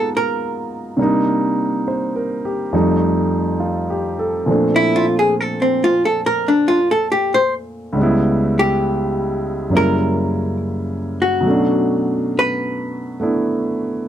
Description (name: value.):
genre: jazz.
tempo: 69 BPM.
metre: 4/4.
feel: swing 68% on 8ths.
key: unclear.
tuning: A4 = 440 Hz.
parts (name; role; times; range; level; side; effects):
archtop guitar, miked and amplified; melody; 0.0-13.2 s; B#3 to B#4; -17 LUFS; equal; none.
warm concert grand piano; accompaniment; 0.0-14.1 s; C#2 to C5; -18 LUFS; right 1 dB; none.
room: little or no reverb.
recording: dry, close 1970s-style studio recording.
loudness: -16 LUFS.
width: side -10 dB against mid.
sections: 0.0-14.1 A section.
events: hollow-body jazz guitar solo 0.0-14.1.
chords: 0.0 Bmaj9#11; 1.0 Cm7; 2.7 F9; 4.5 A#maj9; 8.0 C#m7b5; 9.7 F#7b9; 11.5 Bm9.